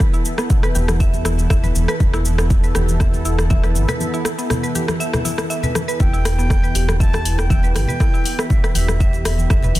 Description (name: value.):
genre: afro house.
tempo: 120 BPM.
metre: 4/4.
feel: swing 53% on 16ths.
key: E minor pentatonic.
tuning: A4 = 437 Hz.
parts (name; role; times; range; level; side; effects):
warm analog pad; sustained chords; 0.0-9.8 s; E3 to A4; -26 LUFS; equal; chorus, sidechain pumping.
afro-pop drum kit; drums; 0.0-9.8 s; hi-hat, rim click, shaker; -24 LUFS; equal; soft clipping on snare.
electronic kick drum; drums; 0.0-9.6 s; none; -17 LUFS; equal; overdrive.
congas; percussion; 0.0-9.8 s; none; -27 LUFS; left 2 dB; none.
mallet-like synth pluck; arpeggios; 0.1-9.7 s; B3 to E5; -27 LUFS; right 1 dB; chorus, sidechain pumping, tape echo.
round analog bass; bass; 0.8-9.8 s; E1 to G1; -19 LUFS; equal; sidechain pumping.
bright reedy concert flute; melody; 6.0-9.7 s; E5 to A5; -28 LUFS; equal; tape echo.
room: digital ambience.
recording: dense, heavily limited modern master.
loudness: -15 LUFS.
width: side -16 dB against mid.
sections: 0.0-9.8 A section.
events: break 4.0-6.0.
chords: 0.0 Em.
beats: | 0.00 0.50 1.00 1.50 | 2.00 2.50 3.00 3.50 | 4.00 4.50 5.00 5.50 | 6.00 6.50 7.00 7.50 | 8.00 8.50 9.00 9.50.